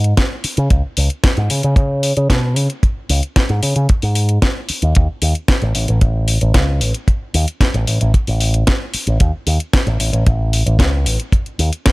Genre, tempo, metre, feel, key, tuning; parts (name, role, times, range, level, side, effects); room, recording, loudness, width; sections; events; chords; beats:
nu-disco, nu disco; 113 BPM; 4/4; straight; A4 = 440 Hz
picked electric bass with an envelope filter; bass; 0.0-11.7 s; A1 to C#3; -15 LUFS; equal
house drum kit; drums; 0.0-11.9 s; hi-hat, snare drum; -20 LUFS; left 1 dB
kick drum; drums; 0.2-11.9 s; -14 LUFS; equal
little or no reverb; -14 LUFS; side -23 dB against mid
0.0-11.9 A section
0.17 | 0.70 1.24 1.77 2.30 | 2.83 3.36 3.89 4.42 | 4.95 5.48 6.01 6.55 | 7.08 7.61 8.14 8.67 | 9.20 9.73 10.26 10.79 | 11.32 11.86